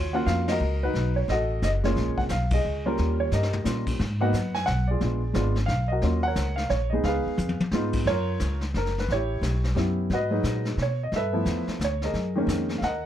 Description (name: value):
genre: jazz piano trio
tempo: 177 BPM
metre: 3/4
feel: swing 64% on 8ths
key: F# major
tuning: A4 = 440 Hz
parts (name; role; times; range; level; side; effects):
- warm baby grand piano; melody; 0.0-13.1 s; D#3 to G#5; -27 LUFS; right 1 dB; none
- upright bass; bass; 0.0-13.1 s; E#1 to B2; -26 LUFS; equal; none
- vintage brush drum kit; drums; 0.3-13.1 s; brushed snare drum, crash cymbal, hi-hat, kick drum, ride cymbal, snare drum, toms; -32 LUFS; left 2 dB; none
room: little or no reverb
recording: none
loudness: -23 LUFS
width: side -11 dB against mid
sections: 0.0-8.1 A section; 8.1-13.1 B section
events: band accent 0.4, 2.5; drum fill 3.3-3.7, 7.4-7.7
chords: 0.0 D#m9; 0.9 B9; 2.0 A#m7; 3.0 D#7; 4.0 G#m7; 5.0 A#7b9; 6.0 D#m7; 7.0 C#9; 8.1 F#maj7; 9.1 A9; 10.1 G#m9; 11.1 G13; 12.1 F#69